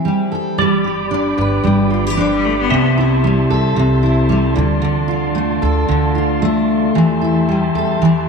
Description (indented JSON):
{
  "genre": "acoustic pop",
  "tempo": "113 BPM",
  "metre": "4/4",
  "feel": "swing 60% on 16ths",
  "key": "C major",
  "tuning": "A4 = 440 Hz",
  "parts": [
    { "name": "fingerpicked steel-string acoustic guitar", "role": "accompaniment", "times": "0.0-8.3 s", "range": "C3 to B4", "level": "-14 LUFS", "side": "equal", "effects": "double-tracked left and right" },
    { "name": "percussive tonewheel organ", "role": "sustained chords", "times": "0.6-8.3 s", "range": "F4 to D6", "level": "-22 LUFS", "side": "equal", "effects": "fast rotary speaker" },
    { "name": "upright bass", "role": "bass", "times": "0.6-8.3 s", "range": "G1 to E2", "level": "-23 LUFS", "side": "equal", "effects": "none" },
    { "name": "rich cello", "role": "second line", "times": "2.1-2.9 s", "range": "E3 to B3", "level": "-22 LUFS", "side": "left 9 dB", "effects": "tape echo" }
  ],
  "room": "moderate plate reverb, RT60 2.9 s",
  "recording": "none",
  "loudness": "-13 LUFS",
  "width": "side -5 dB against mid",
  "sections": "0.6-8.3 A section",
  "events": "break 0.0-0.6",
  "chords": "0.0 C6/E; 0.6 G; 2.7 C6; 4.6 Dm7; 7.0 C6/E"
}